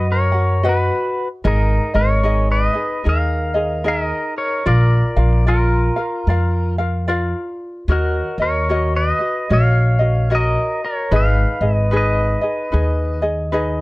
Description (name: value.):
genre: Hawaiian.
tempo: 74 BPM.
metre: 4/4.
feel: swing 62% on 8ths.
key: unclear.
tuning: A4 = 441 Hz.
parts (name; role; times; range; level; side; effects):
pedal steel guitar; melody; 0.0-13.2 s; Eb4 to F5; -21 LUFS; equal; none.
ukulele; accompaniment; 0.0-13.8 s; Eb4 to F#5; -22 LUFS; left 1 dB; none.
upright bass; bass; 0.0-13.8 s; Ab1 to F#2; -17 LUFS; equal; none.
room: little or no reverb.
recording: dark, warm production.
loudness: -15 LUFS.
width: side -20 dB against mid.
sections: 0.0-13.8 A section.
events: none.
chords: 0.0 B; 1.4 Absus2; 4.7 Bb; 7.9 Ebm7; 11.1 Abm.